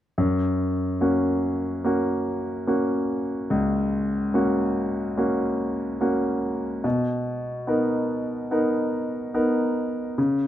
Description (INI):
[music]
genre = pop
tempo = 72 BPM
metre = 4/4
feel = straight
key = F# major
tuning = A4 = 440 Hz
[part]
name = clear concert grand piano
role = accompaniment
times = 0.2-10.5 s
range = C#2 to A#4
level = -22 LUFS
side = equal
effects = none
[sound]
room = light reverb, studio reverb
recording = rough home demo mix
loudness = -22 LUFS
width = side -12 dB against mid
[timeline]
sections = 0.2-10.5 A section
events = none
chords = 0.2 F#; 6.8 Bmaj7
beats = | 0.18 1.01 1.84 2.68 | 3.51 4.34 5.18 6.01 | 6.84 7.68 8.51 9.34 | 10.18